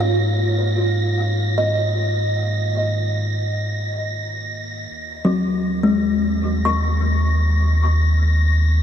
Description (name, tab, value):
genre	ambient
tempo	free time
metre	none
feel	none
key	unclear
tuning	A4 = 440 Hz
part	kalimba	arpeggios	0.0-8.8 s	Gb3 to Db6	-22 LUFS	left 1 dB	diffuse ambient delay, shimmer reverb
part	warm sub bass	bass	0.0-8.8 s	Eb2 to Ab2	-19 LUFS	equal	none
part	organ-like drone	drone	0.0-5.0 s	Eb3 to Bb3	-40 LUFS	right 4 dB	none
part	wind-like tuned noise texture	texture	0.0-8.8 s	Bb6	-28 LUFS	left 1 dB	built-in reverb, shimmer reverb
room	moderate huge ambient reverb, RT60 8.4 s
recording	dark, warm production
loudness	-17 LUFS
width	side -9 dB against mid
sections	0.0-4.9 A section; 4.9-8.8 B section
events	none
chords	0.0 Absus2; 4.9 Ebm7